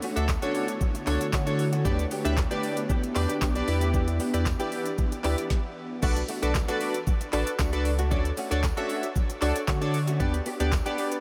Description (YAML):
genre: dance-pop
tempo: 115 BPM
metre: 4/4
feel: straight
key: B minor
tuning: A4 = 441 Hz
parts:
  - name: ethereal airy pad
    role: sustained chords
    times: 0.0-5.5 s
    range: D3 to F#5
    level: -37 LUFS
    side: equal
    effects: ensemble chorus, built-in reverb, sidechain pumping
  - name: direct-recorded clean electric guitar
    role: riff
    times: 0.0-11.2 s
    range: A3 to G4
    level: -38 LUFS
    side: equal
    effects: ensemble chorus
  - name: smooth R&B drum kit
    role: drums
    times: 0.0-11.2 s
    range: crash cymbal, handclaps, hi-hat, kick drum, shaker, snare drum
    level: -32 LUFS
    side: equal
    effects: none
  - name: warm analog keys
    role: accompaniment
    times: 0.2-11.2 s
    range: B3 to E5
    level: -32 LUFS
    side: equal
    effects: chorus, sidechain pumping
  - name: warm sub bass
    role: bass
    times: 0.2-10.8 s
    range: A1 to D3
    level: -30 LUFS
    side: equal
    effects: sidechain pumping
  - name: tambourine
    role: percussion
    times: 0.3-10.8 s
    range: none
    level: -50 LUFS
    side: equal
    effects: none
room: moderate huge ambient reverb, RT60 9.7 s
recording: dreamy mix soaked in reverb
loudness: -27 LUFS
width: mono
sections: 0.0-6.0 A section; 6.0-11.2 A section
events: stop 5.5-6.0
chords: 0.0 Dmaj7; 1.9 G/D; 3.7 Em7; 6.0 Bm7; 8.1 Dmaj7; 10.2 G/D